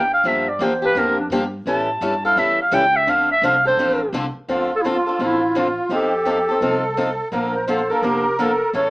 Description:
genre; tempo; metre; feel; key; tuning
acoustic string swing (jazz manouche); 170 BPM; 4/4; swing 63% on 8ths; D minor; A4 = 444 Hz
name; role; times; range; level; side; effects
breathy clarinet; melody; 0.0-8.9 s; D4 to A5; -18 LUFS; equal; none
upright bass; bass; 0.0-8.9 s; F1 to A2; -33 LUFS; equal; none
picked swing-style acoustic guitar; accompaniment; 0.2-8.9 s; C#3 to A4; -22 LUFS; left 1 dB; none
musette accordion; second line; 4.5-8.9 s; F4 to C5; -23 LUFS; right 2 dB; none
room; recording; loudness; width
moderate studio reverb, RT60 0.5 s; small speaker sound; -16 LUFS; side -23 dB against mid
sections
0.0-4.5 A section; 4.5-8.9 B section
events
clarinet solo 0.0-4.5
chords
0.3 Gm7; 1.7 A7; 3.1 Dm7; 5.9 F7; 7.3 Bbmaj7

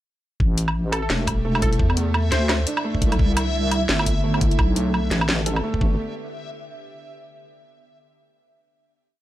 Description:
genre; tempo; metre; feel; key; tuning
half-time drum and bass; 172 BPM; 4/4; swing 58% on 16ths, half-time; A minor; A4 = 443 Hz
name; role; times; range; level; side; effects
bowed-like drone; sustained chords; 0.9-6.0 s; C3 to G4; -34 LUFS; right 2 dB; built-in reverb, phaser, vintage 12-bit sampler grit, sidechain pumping
deep soft wobble bass; bass; 0.4-6.0 s; E1 to E2; -22 LUFS; equal; chorus
electronic kick drum; drums; 0.4-5.9 s; none; -21 LUFS; equal; none
backwards swelling texture; texture; 1.1-6.0 s; E5; -32 LUFS; left 1 dB; built-in reverb
drum and bass drum kit; drums; 0.6-5.6 s; hi-hat, snare drum, woodblock; -24 LUFS; right 1 dB; none
glassy wavetable pluck; melody; 0.9-2.8 s; A4 to C5; -30 LUFS; right 1 dB; chorus, analog delay
felt-muted upright piano; arpeggios; 1.1-6.0 s; A3 to A4; -29 LUFS; right 2 dB; vintage 12-bit sampler grit, analog delay
room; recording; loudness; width
little or no reverb; dry, gritty hardware recording; -19 LUFS; side -14 dB against mid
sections
0.4-6.0 drop; 6.0-7.4 final hit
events
drop 0.4-6.0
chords
0.4 Am7; 1.8 Dsus2; 3.2 Cadd9; 4.6 G; 5.8 Am7; 6.0 N.C.

